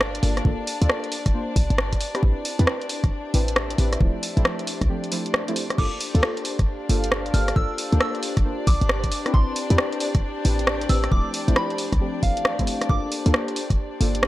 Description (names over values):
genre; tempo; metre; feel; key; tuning
UK garage, two-step garage; 135 BPM; 4/4; swing 64% on 16ths; G dorian; A4 = 440 Hz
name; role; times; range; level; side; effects
dark studio violin section; sustained chords; 0.0-14.3 s; D4 to D5; -33 LUFS; left 3 dB; sidechain pumping
short 808-style bass; bass; 0.0-14.3 s; D1 to E2; -21 LUFS; equal; none
punchy analog drum machine; drums; 0.0-14.3 s; crash cymbal, hi-hat, rim click; -25 LUFS; equal; none
airy breathy pad; texture; 0.0-14.3 s; D4 to G5; -33 LUFS; left 1 dB; chorus, sidechain pumping
deep mellow chord stab; stabs; 0.2-14.1 s; E3 to C5; -30 LUFS; equal; chorus, analog delay
electronic kick drum; drums; 0.5-13.8 s; none; -22 LUFS; equal; none
soft synth bell; melody; 5.8-13.1 s; F5 to F6; -30 LUFS; right 1 dB; chorus, analog delay
room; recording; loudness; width
little or no reverb; dry, gritty hardware recording; -20 LUFS; side -16 dB against mid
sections
0.0-14.3 A section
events
fade-in on analog synth pad 0.0-14.3; break 4.9-5.8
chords
0.0 Gm9; 2.0 Am9; 4.0 Dm9; 5.8 Gm9; 9.1 Am9; 11.1 Dm9; 12.9 Gm9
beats
0.01 | 0.45 0.90 1.34 1.78 | 2.23 2.67 3.12 3.56 | 4.01 4.45 4.89 5.34 | 5.78 6.23 6.67 7.12 | 7.56 8.01 8.45 8.89 | 9.34 9.78 10.23 10.67 | 11.12 11.56 12.01 12.45 | 12.89 13.34 13.78 14.23